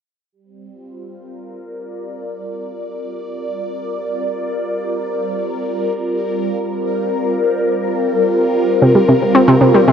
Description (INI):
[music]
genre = ambient, sequencer-driven space music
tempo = free time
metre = none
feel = none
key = G minor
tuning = A4 = 440 Hz
[part]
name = phased analog pad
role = sustained chords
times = 0.3-9.9 s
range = G3 to D5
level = -18 LUFS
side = left 1 dB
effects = phaser, chorus
[part]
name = analog pluck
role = riff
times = 8.8-9.9 s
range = C3 to C4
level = -10 LUFS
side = equal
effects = chorus, ping-pong delay
[sound]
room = wet huge ambient reverb, RT60 8.6 s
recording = worn, warbling old tape, cassette tape, warbly pitch drift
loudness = -14 LUFS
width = side -8 dB against mid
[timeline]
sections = 0.3-9.9 A section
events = fade-in on analog synth pad 0.3-9.9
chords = 0.3 Gm7; 8.8 C5